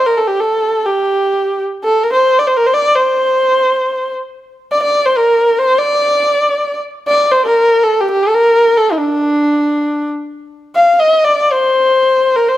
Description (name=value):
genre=Persian modal ensemble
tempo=free time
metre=none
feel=none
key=D dastgah shur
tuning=A4 = 440 Hz
part: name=dark kamancheh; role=solo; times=0.0-12.6 s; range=D4 to F5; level=-11 LUFS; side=equal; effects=none
room=light reverb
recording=none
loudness=-11 LUFS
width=side -14 dB against mid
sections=0.0-10.5 A section; 10.5-12.6 A section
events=none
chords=none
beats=free time